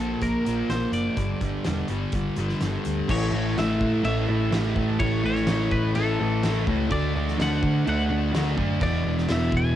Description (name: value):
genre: rock, shoegaze and dream pop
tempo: 126 BPM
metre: 4/4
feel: straight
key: unclear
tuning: A4 = 440 Hz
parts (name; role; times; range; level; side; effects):
- twelve-string electric guitar; melody; 0.0-9.8 s; A4 to G#5; -31 LUFS; left 1 dB; cassette tape, tape echo
- thick fuzz guitar; riff; 0.0-9.8 s; E2 to D4; -25 LUFS; equal; distortion, wide subtle chorus, cassette tape
- vintage muted picked electric bass; bass; 0.0-9.7 s; E1 to D3; -28 LUFS; equal; none
- loose indie drum kit; drums; 0.2-9.6 s; crash cymbal, hi-hat, kick drum, snare drum; -30 LUFS; equal; cassette tape
room: moderate booth ambience, RT60 0.2 s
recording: home recording on cassette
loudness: -22 LUFS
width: side -11 dB against mid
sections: 0.0-3.1 A section; 3.1-9.8 B section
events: none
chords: 0.0 Bb5; 1.2 G5; 3.1 A; 6.9 D; 8.8 E7(no3)